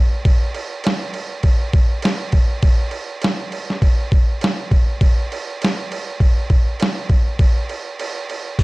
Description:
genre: metal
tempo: 101 BPM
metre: 4/4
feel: straight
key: none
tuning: none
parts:
  - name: lo-fi sampler-style drum kit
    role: drums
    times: 0.3-8.6 s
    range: crash cymbal, hi-hat, kick drum, snare drum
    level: -16 LUFS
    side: equal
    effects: none
room: light reverb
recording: dark, warm production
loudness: -16 LUFS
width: side -23 dB against mid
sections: 0.0-8.6 A section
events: break 8.0-8.6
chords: none

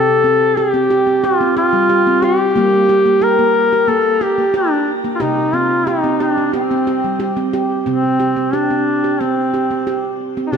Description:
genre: world meditative, meditative tuned percussion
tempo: 91 BPM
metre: 4/4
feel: straight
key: C dorian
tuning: A4 = 440 Hz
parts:
  - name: warm duduk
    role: melody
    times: 0.0-10.6 s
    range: C4 to Bb4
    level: -15 LUFS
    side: left 2 dB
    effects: shimmer reverb
  - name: handpan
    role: arpeggios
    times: 0.0-10.6 s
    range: C3 to G4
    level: -17 LUFS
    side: right 3 dB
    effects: shimmer reverb, tape echo
room: wet recital hall reverb, RT60 1.8 s, small room ambience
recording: none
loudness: -13 LUFS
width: side -6 dB against mid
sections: 0.0-7.9 A section; 7.9-10.6 B section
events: none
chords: 0.0 C5; 2.6 Gm; 5.2 C5

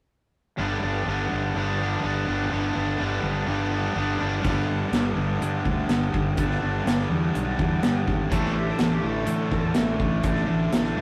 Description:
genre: classic rock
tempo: 124 BPM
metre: 4/4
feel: straight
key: unclear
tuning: A4 = 441 Hz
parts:
  - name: crunchy overdriven guitar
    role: riff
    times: 0.6-11.0 s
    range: G2 to D4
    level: -32 LUFS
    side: equal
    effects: none
  - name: tight distorted guitar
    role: riff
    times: 0.6-11.0 s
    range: G2 to D4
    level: -30 LUFS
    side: equal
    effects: distortion
  - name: fuzz fingered electric bass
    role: bass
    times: 0.6-11.0 s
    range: G1 to A2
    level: -30 LUFS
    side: equal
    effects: overdrive
  - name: big rock drum kit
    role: drums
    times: 4.4-10.9 s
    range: crash cymbal, hi-hat, kick drum, snare drum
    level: -29 LUFS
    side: equal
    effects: none
  - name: lead guitar through a small cranked amp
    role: second line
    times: 8.3-10.0 s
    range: G4 to C5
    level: -37 LUFS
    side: equal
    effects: overdrive, slapback echo
room: moderate studio reverb, RT60 0.6 s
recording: rough rehearsal-room recording, warm saturation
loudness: -25 LUFS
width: mono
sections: 0.6-4.4 A section; 4.4-11.0 B section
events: none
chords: 0.6 G; 8.3 Asus4

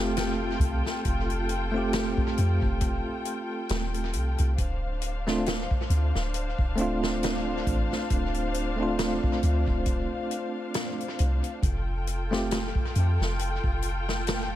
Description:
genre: trip hop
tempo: 68 BPM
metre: 4/4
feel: swing 56% on 16ths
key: D minor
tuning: A4 = 440 Hz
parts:
  - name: bell-like tine electric piano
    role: accompaniment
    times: 0.0-12.6 s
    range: A3 to G4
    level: -31 LUFS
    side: right 1 dB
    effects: medium stereo tremolo, vintage 12-bit sampler grit, tape echo
  - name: muted studio string section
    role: sustained chords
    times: 0.0-14.6 s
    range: D4 to G5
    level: -34 LUFS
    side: left 2 dB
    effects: none
  - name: soft 808-style bass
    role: bass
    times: 0.0-14.6 s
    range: D1 to F2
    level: -28 LUFS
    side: equal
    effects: none
  - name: swinging big-band drum kit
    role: drums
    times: 0.2-14.5 s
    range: hi-hat, kick drum, snare drum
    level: -30 LUFS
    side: equal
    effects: tape echo
room: little or no reverb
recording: echo-heavy mix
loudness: -25 LUFS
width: side -13 dB against mid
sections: 0.0-14.6 A section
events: none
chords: 0.0 Fadd9; 4.6 Dm7; 11.6 Fadd9

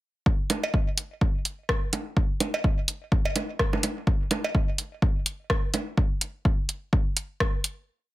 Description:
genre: techno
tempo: 126 BPM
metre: 4/4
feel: swing 57% on 16ths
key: none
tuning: none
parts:
  - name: electronic kick drum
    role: drums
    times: 0.3-7.5 s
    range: none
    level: -24 LUFS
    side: equal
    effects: none
  - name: punchy analog drum machine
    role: drums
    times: 0.5-7.8 s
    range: hi-hat, rim click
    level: -26 LUFS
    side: equal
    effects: none
  - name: bongos and cowbell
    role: percussion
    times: 0.5-5.8 s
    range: none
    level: -29 LUFS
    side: right 3 dB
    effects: tape echo
room: little or no reverb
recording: none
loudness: -24 LUFS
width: side -17 dB against mid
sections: 0.3-7.9 groove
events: none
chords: none

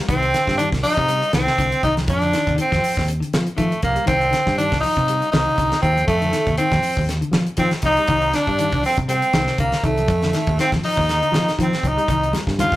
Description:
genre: afrobeat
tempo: 120 BPM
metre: 4/4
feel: swing 56% on 16ths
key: C dorian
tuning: A4 = 440 Hz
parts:
  - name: clean electric guitar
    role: arpeggios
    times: 0.0-12.8 s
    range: C3 to G3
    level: -27 LUFS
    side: left 3 dB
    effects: none
  - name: raspy tenor saxophone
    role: melody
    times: 0.1-12.8 s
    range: A3 to F4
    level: -20 LUFS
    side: equal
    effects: none
  - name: brilliant trombone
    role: second line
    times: 0.1-12.8 s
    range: A3 to F4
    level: -25 LUFS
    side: right 3 dB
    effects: none
  - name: fingered electric bass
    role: bass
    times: 0.1-12.8 s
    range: C2 to F3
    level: -23 LUFS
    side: equal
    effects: none
  - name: damped 70s drum kit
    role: drums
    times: 0.1-12.8 s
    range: hi-hat, kick drum, snare drum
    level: -24 LUFS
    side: equal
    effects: none
  - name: congas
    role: percussion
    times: 12.3-12.7 s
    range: none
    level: -26 LUFS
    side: equal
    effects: none
room: moderate studio reverb, RT60 0.7 s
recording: rough rehearsal-room recording, tube saturation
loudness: -16 LUFS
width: side -15 dB against mid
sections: 0.0-12.8 A section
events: none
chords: 0.0 Cm

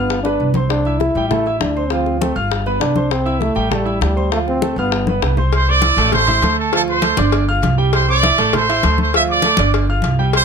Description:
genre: latin, salsa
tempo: 199 BPM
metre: 4/4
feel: straight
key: unclear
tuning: A4 = 440 Hz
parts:
  - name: dark trombone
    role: melody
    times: 0.0-5.3 s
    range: G3 to E4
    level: -20 LUFS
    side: left 1 dB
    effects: none
  - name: clear concert grand piano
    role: accompaniment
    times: 0.0-10.4 s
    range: F3 to F6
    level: -21 LUFS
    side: right 4 dB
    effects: none
  - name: upright bass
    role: bass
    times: 0.0-10.4 s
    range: G1 to D2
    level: -19 LUFS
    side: equal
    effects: none
  - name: bongos and cowbell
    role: percussion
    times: 0.1-10.4 s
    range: none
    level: -24 LUFS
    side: left 8 dB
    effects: none
  - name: congas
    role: percussion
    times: 0.1-10.4 s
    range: none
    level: -24 LUFS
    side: left 2 dB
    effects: none
  - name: bright trumpet section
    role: melody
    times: 5.5-10.4 s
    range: A4 to E6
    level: -15 LUFS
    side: right 2 dB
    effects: none
room: little or no reverb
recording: close, detailed microphones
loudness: -14 LUFS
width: side -6 dB against mid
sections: 0.0-5.5 A section; 5.5-10.4 B section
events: drum fill 0.3-0.7, 5.1-5.5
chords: 0.1 G7; 0.7 Cadd9; 1.3 Am; 1.9 Dm7; 2.5 G7; 3.1 C; 3.7 Am7; 4.3 Dm7; 4.9 G7; 5.5 Am; 6.7 Dm7; 7.3 G5; 7.9 Cadd9; 8.5 Am; 9.1 Dm; 9.7 G5

